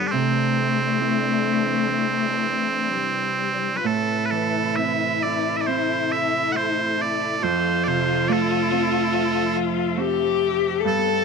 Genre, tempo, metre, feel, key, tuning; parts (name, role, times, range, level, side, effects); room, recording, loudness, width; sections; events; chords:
celtic folk, Celtic slow air; 59-72 BPM; 4/4; rubato; A4 = 440 Hz
loud bright bagpipes; melody; 0.0-11.2 s; C4 to F#5; -23 LUFS; right 4 dB
warm cello; second line; 0.0-11.2 s; G3 to A4; -24 LUFS; left 11 dB
Celtic harp; accompaniment; 0.0-11.2 s; F2 to E5; -26 LUFS; right 9 dB
clear symphonic string section; sustained chords; 0.0-11.2 s; C3 to E5; -32 LUFS; right 1 dB
moderate spring reverb, RT60 1.6 s, studio ambience; 1960s-style stereo with parts hard left and right; -20 LUFS; side -5 dB against mid
0.0-3.9 A section; 3.9-11.2 B section
0.1 Cadd9; 3.9 Amadd9; 7.4 Fmaj7